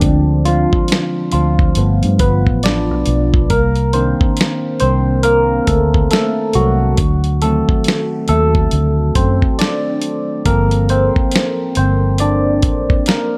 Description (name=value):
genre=R&B, neo-soul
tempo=69 BPM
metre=4/4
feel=swing 62% on 16ths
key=G minor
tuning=A4 = 440 Hz
part: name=barky tine electric piano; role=accompaniment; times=0.0-13.4 s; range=D3 to D5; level=-18 LUFS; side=equal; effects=overdrive, phaser
part: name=vintage muted fingered electric bass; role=bass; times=0.0-13.0 s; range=G1 to G2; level=-18 LUFS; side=equal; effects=none
part: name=dusty soul sampler-style drum kit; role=drums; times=0.0-13.3 s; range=hi-hat, kick drum, snare drum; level=-19 LUFS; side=equal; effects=none
room=digital ambience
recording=none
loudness=-15 LUFS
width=mono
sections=0.0-13.4 A section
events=tine electric piano solo 0.0-13.4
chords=0.0 Dm7b5; 1.8 G7; 3.5 Cm7; 7.0 D7b9; 10.5 Gm11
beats=| 0.02 0.89 1.76 2.63 | 3.50 4.37 5.24 6.11 | 6.98 7.85 8.72 9.59 | 10.46 11.33 12.20 13.06